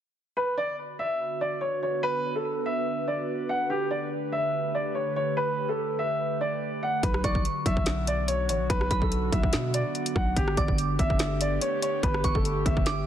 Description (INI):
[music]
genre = hip hop, trap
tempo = 144 BPM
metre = 4/4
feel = half-time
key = B minor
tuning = A4 = 440 Hz
[part]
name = dark grand piano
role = melody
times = 0.4-13.0 s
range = G4 to F#5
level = -28 LUFS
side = equal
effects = low-pass filter, tape echo
[part]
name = warbly tape-like pad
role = sustained chords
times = 0.9-13.1 s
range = D3 to B4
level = -33 LUFS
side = right 1 dB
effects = chorus, built-in reverb, phaser
[part]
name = growling 808-style bass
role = bass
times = 7.0-13.1 s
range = G1 to B2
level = -29 LUFS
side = equal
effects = none
[part]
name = trap drum kit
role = drums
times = 7.0-13.0 s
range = hi-hat, kick drum, rim click, snare drum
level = -27 LUFS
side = equal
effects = overdrive
[part]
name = soft synth bell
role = second line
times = 7.2-13.1 s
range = B5 to D6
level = -35 LUFS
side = right 3 dB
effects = chorus, tape echo
[sound]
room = light reverb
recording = dense, heavily limited modern master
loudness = -25 LUFS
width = side -10 dB against mid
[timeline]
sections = 0.4-7.0 A section; 7.0-13.1 B section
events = none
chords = 0.4 Bm; 3.7 Gadd9; 7.0 Bm; 10.4 Gadd9